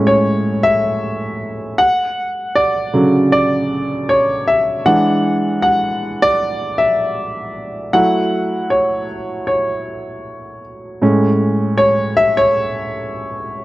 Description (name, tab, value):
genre	R&B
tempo	78 BPM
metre	4/4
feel	swing 54% on 16ths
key	A major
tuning	A4 = 438 Hz
part	clear concert grand piano	solo	0.0-13.6 s	A2 to F#5	-14 LUFS	equal	none
room	moderate lush hall reverb, RT60 2.3 s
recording	worn, warbling old tape, cassette tape, warbly pitch drift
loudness	-14 LUFS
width	side -17 dB against mid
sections	0.0-13.6 A section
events	grand piano solo 0.0-13.6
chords	0.0 Amaj7; 1.8 Dmaj7; 4.9 E9; 7.9 F#m7; 11.0 Amaj7